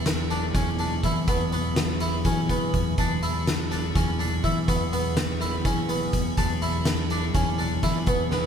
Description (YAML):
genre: progressive instrumental, band music in an uneven meter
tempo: 247 BPM (eighths)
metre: 7/8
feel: straight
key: E mixolydian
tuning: A4 = 440 Hz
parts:
  - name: tonewheel organ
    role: accompaniment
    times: 0.0-8.5 s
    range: F#3 to G#5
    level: -32 LUFS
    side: equal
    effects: slow rotary speaker
  - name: harpsichord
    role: arpeggios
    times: 0.0-8.5 s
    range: B3 to E4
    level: -29 LUFS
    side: right 2 dB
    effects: none
  - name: fingered electric bass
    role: bass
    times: 0.0-8.5 s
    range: E2 to E3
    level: -28 LUFS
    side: left 1 dB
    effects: none
  - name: oversized low-tuned drum kit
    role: drums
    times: 0.1-8.4 s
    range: hi-hat, kick drum, snare drum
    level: -26 LUFS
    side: equal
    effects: none
room: wet cathedral reverb, RT60 4.7 s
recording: recorded in a church or concert hall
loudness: -22 LUFS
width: side -8 dB against mid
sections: 0.0-8.5 A section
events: tonewheel organ fill 5.7-6.4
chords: 0.0 E7